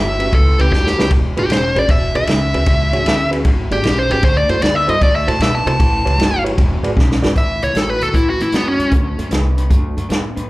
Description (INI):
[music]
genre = electric blues shuffle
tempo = 154 BPM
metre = 4/4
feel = swing 68% on 8ths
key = A mixolydian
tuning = A4 = 440 Hz
[part]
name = dark smooth lead guitar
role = melody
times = 0.0-8.9 s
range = B3 to A5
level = -18 LUFS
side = equal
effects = overdrive, slapback echo
[part]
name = electric guitar through a small old amp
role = riff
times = 0.0-10.5 s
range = E2 to B3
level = -24 LUFS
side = left 2 dB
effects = harmonic tremolo, slapback echo
[part]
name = upright bass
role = bass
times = 0.0-10.5 s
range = E1 to C3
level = -18 LUFS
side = equal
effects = none
[part]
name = mellow reed electric piano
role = accompaniment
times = 0.2-7.3 s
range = C#4 to D5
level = -23 LUFS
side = right 2 dB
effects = fast tremolo
[part]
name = vintage drum kit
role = drums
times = 0.2-10.4 s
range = hi-hat, kick drum, ride cymbal, snare drum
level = -17 LUFS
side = equal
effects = none
[sound]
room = little or no reverb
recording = live gig heard through the venue's PA, club reverb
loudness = -13 LUFS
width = side -19 dB against mid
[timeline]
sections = 0.0-7.4 A section; 7.4-10.5 B section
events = lead electric guitar solo 0.0-7.4; drum fill 0.7-1.1, 7.0-7.4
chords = 0.0 A7; 1.1 E7; 4.2 D7; 5.8 A7; 6.6 E7; 7.4 A; 8.9 D7